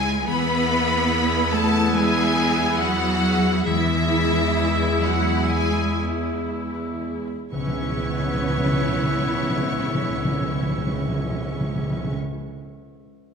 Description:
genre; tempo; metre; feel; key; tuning
cinematic, emotional film score for orchestra; 57-73 BPM; 4/4; rubato; C# minor; A4 = 440 Hz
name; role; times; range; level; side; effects
rich studio violin section; melody; 0.0-12.1 s; E5 to C#6; -29 LUFS; left 2 dB; none
hollow flute section; second line; 0.0-12.1 s; C#5 to B5; -30 LUFS; left 1 dB; none
rich studio violin section; second line; 0.0-12.1 s; E4 to C#5; -31 LUFS; left 2 dB; none
clear studio viola section; accompaniment; 0.0-12.1 s; G#3 to E4; -30 LUFS; left 1 dB; none
mellow French horn section; sustained chords; 0.0-12.1 s; G#3 to E4; -30 LUFS; left 4 dB; none
concert harp; arpeggios; 0.0-12.5 s; C#3 to E5; -31 LUFS; left 6 dB; none
clear studio double bass section; bass; 0.0-12.1 s; C#2 to E2; -28 LUFS; right 3 dB; none
rich studio cello section; bass; 0.0-12.1 s; E3 to C#4; -26 LUFS; right 2 dB; none
warm clarinet; second line; 0.3-12.1 s; G#4 to B4; -34 LUFS; equal; none
warm oboe; second line; 0.3-12.2 s; E5; -32 LUFS; equal; none
timpani; percussion; 7.5-12.2 s; C#3; -25 LUFS; equal; none
room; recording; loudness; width
wet scoring stage reverb, RT60 1.8 s; none; -20 LUFS; side -6 dB against mid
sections
0.0-7.5 A section; 7.5-11.5 B section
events
slowing down 0.0-7.5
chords
0.3 E; 7.5 C#m7

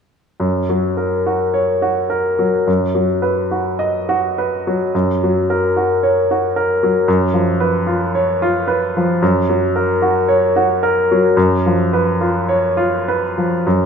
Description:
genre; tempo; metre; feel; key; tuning
classical, romantic nocturne for solo piano; 50-58 BPM; 4/4; rubato; F# major; A4 = 440 Hz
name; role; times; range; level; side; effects
clear grand piano; solo; 0.4-13.9 s; F#2 to D#5; -14 LUFS; equal; none
room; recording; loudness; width
wet large studio reverb, RT60 1.2 s; none; -14 LUFS; side -6 dB against mid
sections
0.4-13.9 A section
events
none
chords
0.4 F#; 2.7 B/F#; 4.9 F#; 7.1 C#7/F#; 9.2 F#; 11.4 C#7/F#

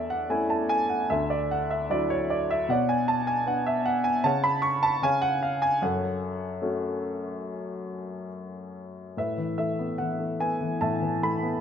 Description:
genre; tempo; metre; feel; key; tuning
classical, lyrical solo piano; 67-78 BPM; 4/4; rubato; F# minor; A4 = 440 Hz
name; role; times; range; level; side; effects
warm baby grand piano; solo; 0.0-11.6 s; D2 to C#6; -25 LUFS; equal; none
room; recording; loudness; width
moderate recital hall reverb, RT60 1.7 s; none; -24 LUFS; side -8 dB against mid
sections
0.0-9.2 A section; 9.2-11.6 B section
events
none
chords
0.0 A/E; 1.1 Dadd9; 2.7 Bmadd9; 4.2 F#5/C#; 5.0 C#; 5.8 F#m; 9.2 Asus2

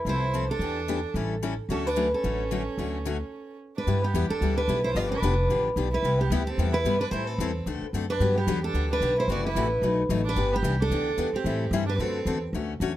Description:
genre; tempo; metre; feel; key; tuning
acoustic string swing (jazz manouche); 221 BPM; 4/4; swing 58% on 8ths; D major, G major from 3.9 s; A4 = 440 Hz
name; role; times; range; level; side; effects
picked steel-string acoustic guitar; melody; 0.1-12.4 s; G4 to D5; -28 LUFS; right 1 dB; plate reverb
clear violin; second line; 0.1-12.4 s; B3 to F#4; -34 LUFS; right 5 dB; none
picked steel-string acoustic guitar; accompaniment; 0.1-12.9 s; B2 to A4; -30 LUFS; left 6 dB; none
upright bass; bass; 0.1-13.0 s; F1 to A2; -28 LUFS; equal; none
room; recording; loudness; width
light reverb; none; -24 LUFS; side -13 dB against mid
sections
0.0-3.9 A section; 3.9-12.5 B section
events
stop 3.3-3.9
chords
0.0 Fmaj7; 0.6 Em7; 1.1 A7; 1.7 Dmaj7; 3.9 G6; 5.0 G7; 6.0 Cmaj7; 7.1 Am7; 7.7 D7; 8.2 Gmaj7; 9.3 F#m7b5; 9.8 B7; 10.4 Em7; 11.4 Am7; 12.0 D7

